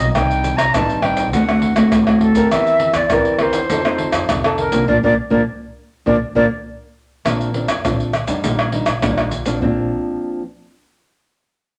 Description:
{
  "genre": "samba and choro",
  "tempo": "101 BPM",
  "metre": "4/4",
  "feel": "straight",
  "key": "Bb major",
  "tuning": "A4 = 440 Hz",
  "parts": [
    { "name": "silver concert flute", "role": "melody", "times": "0.0-6.5 s", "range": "A4 to Bb5", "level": "-21 LUFS", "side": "equal", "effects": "none" },
    { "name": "nylon-string guitar", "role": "accompaniment", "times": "0.0-10.4 s", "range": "G2 to Bb4", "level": "-20 LUFS", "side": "equal", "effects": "none" },
    { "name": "upright bass", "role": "bass", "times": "0.0-9.9 s", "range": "A1 to F2", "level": "-28 LUFS", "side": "equal", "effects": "none" },
    { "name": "maracas, surdo, pandeiro and tamborim", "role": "percussion", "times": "0.1-9.8 s", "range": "none", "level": "-23 LUFS", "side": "equal", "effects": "none" }
  ],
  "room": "moderate studio reverb, RT60 0.8 s",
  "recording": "none",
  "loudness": "-17 LUFS",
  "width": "mono",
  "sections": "0.0-7.2 A section; 7.2-9.6 B section; 9.6-11.8 C section",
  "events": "band accent 4.9-7.2",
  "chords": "0.1 Cm; 1.3 D7; 2.5 C7/E; 3.7 F7; 4.9 Bb; 7.2 Bbadd9",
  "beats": "| 0.15 0.74 1.33 1.92 | 2.51 3.10 3.70 4.29 | 4.88 5.47 6.06 6.66 | 7.25 7.84 8.43 9.03 | 9.62 10.21"
}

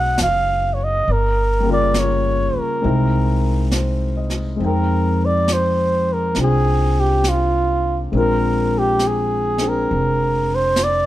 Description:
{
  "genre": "jazz ballad",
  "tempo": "68 BPM",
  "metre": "4/4",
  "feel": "swing 68% on 8ths",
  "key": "unclear",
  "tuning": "A4 = 439 Hz",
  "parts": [
    { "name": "warm flugelhorn", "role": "melody", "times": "0.0-11.1 s", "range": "F4 to Gb5", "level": "-19 LUFS", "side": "right 1 dB", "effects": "none" },
    { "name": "warm concert grand piano", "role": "accompaniment", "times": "0.0-11.1 s", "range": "Db3 to G5", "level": "-23 LUFS", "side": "left 3 dB", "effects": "none" },
    { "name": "upright bass", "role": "bass", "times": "0.0-11.1 s", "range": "F1 to F2", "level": "-20 LUFS", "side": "equal", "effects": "none" },
    { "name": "jazz brush drum kit", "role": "drums", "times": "0.2-11.1 s", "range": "brushed snare drum, hi-hat, snare drum", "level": "-27 LUFS", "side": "right 1 dB", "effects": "none" }
  ],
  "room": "little or no reverb",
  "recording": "none",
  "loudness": "-16 LUFS",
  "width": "side -14 dB against mid",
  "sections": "0.0-11.1 A section",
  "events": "none",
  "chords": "0.0 Abm7; 1.1 Gm7b5; 2.8 C7alt; 4.6 Fm11; 8.1 Bb7",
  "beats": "0.18 | 1.06 1.95 2.83 3.71 | 4.60 5.48 6.36 7.24 | 8.12 9.01 9.89 10.77"
}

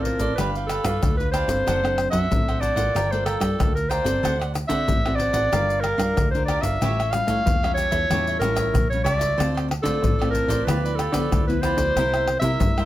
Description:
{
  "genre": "samba and choro",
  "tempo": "93 BPM",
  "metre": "4/4",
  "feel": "straight",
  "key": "D minor",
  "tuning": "A4 = 440 Hz",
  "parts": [
    { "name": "warm clarinet", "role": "melody", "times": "0.0-12.9 s", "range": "A4 to F5", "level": "-24 LUFS", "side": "equal", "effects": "none" },
    { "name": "cavaquinho", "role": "accompaniment", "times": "0.0-12.9 s", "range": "D4 to G5", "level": "-31 LUFS", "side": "right 3 dB", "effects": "none" },
    { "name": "nylon-string guitar", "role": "accompaniment", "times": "0.0-12.9 s", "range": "G2 to B4", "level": "-29 LUFS", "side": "left 3 dB", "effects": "none" },
    { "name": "plucky analog bass", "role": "bass", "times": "0.0-12.9 s", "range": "F#1 to D3", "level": "-26 LUFS", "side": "equal", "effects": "none" },
    { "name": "pandeiro, egg shaker, surdo and tamborim", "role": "percussion", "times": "0.1-12.9 s", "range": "none", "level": "-25 LUFS", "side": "left 1 dB", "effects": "none" }
  ],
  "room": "moderate studio reverb, RT60 0.6 s",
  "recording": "none",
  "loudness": "-20 LUFS",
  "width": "side -14 dB against mid",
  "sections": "0.0-12.9 A section",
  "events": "none",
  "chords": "0.4 G7; 1.7 D7/F#; 3.0 Gm9; 4.2 D7; 5.5 Gm7; 6.8 A7b9b13; 9.4 Dm7; 10.7 G6/D; 12.0 C7",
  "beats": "0.38 1.03 | 1.67 2.31 2.96 3.60 | 4.24 4.89 5.53 6.17 | 6.82 7.46 8.10 8.75 | 9.39 10.03 10.68 11.32 | 11.96 12.61"
}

